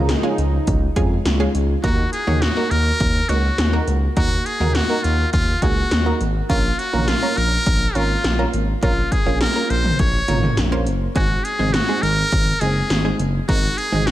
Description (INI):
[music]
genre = synth-pop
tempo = 103 BPM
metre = 4/4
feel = straight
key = Eb dorian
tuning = A4 = 441 Hz
[part]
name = analog pluck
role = accompaniment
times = 0.0-14.1 s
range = Ab3 to Db5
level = -25 LUFS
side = right 2 dB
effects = chorus
[part]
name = chorused pulse-width pad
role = sustained chords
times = 0.0-1.8 s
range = Db3 to Eb4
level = -30 LUFS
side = right 1 dB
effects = none
[part]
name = smooth gliding synth bass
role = bass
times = 0.0-14.1 s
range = Gb1 to F2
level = -20 LUFS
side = equal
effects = none
[part]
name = 80s electronic pad drums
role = drums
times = 0.1-14.1 s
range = hi-hat, kick drum, snare drum, toms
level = -22 LUFS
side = equal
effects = gated reverb on snare and toms
[part]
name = trumpet with metal mute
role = melody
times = 1.8-14.1 s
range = F4 to Db5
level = -22 LUFS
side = equal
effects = none
[sound]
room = light reverb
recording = none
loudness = -16 LUFS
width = side -14 dB against mid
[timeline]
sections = 0.0-1.8 A section; 1.8-14.1 B section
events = none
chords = 0.0 Db; 1.8 Ebm; 6.5 Bbm; 11.2 Ab